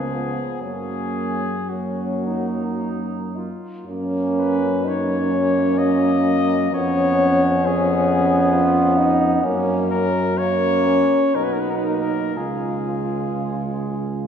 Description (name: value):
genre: classical, hymn-like piece for brass band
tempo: 54-69 BPM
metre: 3/4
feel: rubato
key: F# major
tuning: A4 = 440 Hz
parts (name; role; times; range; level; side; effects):
- warm flugelhorn; melody; 0.0-14.3 s; F#4 to D#5; -24 LUFS; left 4 dB; none
- mellow French horn section; second line; 0.0-14.3 s; A#3 to E#4; -23 LUFS; right 3 dB; none
- clear euphonium; accompaniment; 0.0-14.3 s; E#3 to E#4; -26 LUFS; left 1 dB; none
- warm trombone; accompaniment; 0.0-14.3 s; G#3 to E#4; -26 LUFS; right 1 dB; none
- warm tuba; bass; 0.0-14.3 s; B1 to F#2; -25 LUFS; left 1 dB; none
room: wet church reverb, RT60 2.6 s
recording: heard from further back in the room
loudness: -18 LUFS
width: side -8 dB against mid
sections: 0.0-3.9 A section; 3.9-14.3 A section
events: none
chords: 0.0 C#7; 0.6 F#; 6.7 C#7/E#; 9.4 F#; 11.3 B; 12.3 C#